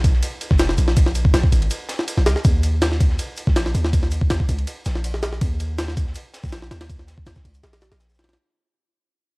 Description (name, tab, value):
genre	drum and bass, jungle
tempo	162 BPM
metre	4/4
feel	straight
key	unclear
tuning	A4 = 440 Hz
part	warm 808-style bass	bass	0.0-8.4 s	F1 to Eb2	-21 LUFS	equal	tube saturation
part	crunchy breakbeat drum kit	drums	0.0-8.3 s	hi-hat, shaker, snare drum	-37 LUFS	left 1 dB	high-pass filter on hats, studio reverb, high-pass filter on snare, high-pass filter on perc, high-pass filter on room
part	jungle sampler-style drum kit	drums	0.0-8.4 s	kick drum, ride cymbal, snare drum	-19 LUFS	equal	studio reverb
room	little or no reverb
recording	dry, gritty hardware recording, vinyl crackle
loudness	-18 LUFS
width	side -28 dB against mid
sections	0.0-8.4 A section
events	drop 0.0-8.4; fade-out 2.5-8.4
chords	none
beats	0.23 0.60 | 0.97 1.34 1.71 2.08 | 2.45 2.82 3.19 3.56 | 3.93 4.30 4.67 5.04 | 5.41 5.78 6.15 6.53 | 6.89 7.26 7.64 8.01